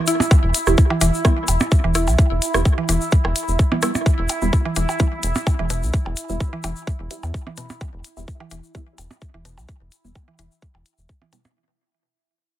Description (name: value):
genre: minimal techno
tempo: 128 BPM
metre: 4/4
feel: swing 53% on 16ths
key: E minor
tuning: A4 = 439 Hz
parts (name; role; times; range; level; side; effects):
- bubbling stepped-filter texture; texture; 0.0-11.6 s; E4; -28 LUFS; right 3 dB; chorus, built-in reverb, sidechain pumping
- mallet-like synth pluck; riff; 0.1-11.4 s; B2 to E4; -26 LUFS; equal; chorus, vintage 12-bit sampler grit, sidechain pumping, digital delay
- electronic hi-hat; drums; 0.1-11.4 s; none; -24 LUFS; left 3 dB; none
- tube shaker; percussion; 0.1-11.5 s; none; -29 LUFS; left 5 dB; none
- electronic percussion blips and rim click; percussion; 0.2-11.5 s; none; -25 LUFS; right 2 dB; dub echo
- electronic kick drum; drums; 0.3-11.2 s; none; -16 LUFS; equal; none
- rubbery square bass; bass; 0.4-11.1 s; E1 to E2; -22 LUFS; equal; sidechain pumping
- filtered dub chord stab; stabs; 0.7-11.4 s; G3 to E4; -27 LUFS; right 5 dB; phaser, lush chorus, dub echo
room: light reverb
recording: none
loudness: -17 LUFS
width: side -13 dB against mid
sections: 0.0-11.6 A section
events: fade-out 0.0-11.6; filter sweep on synth stab 0.0-11.6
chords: 0.0 E5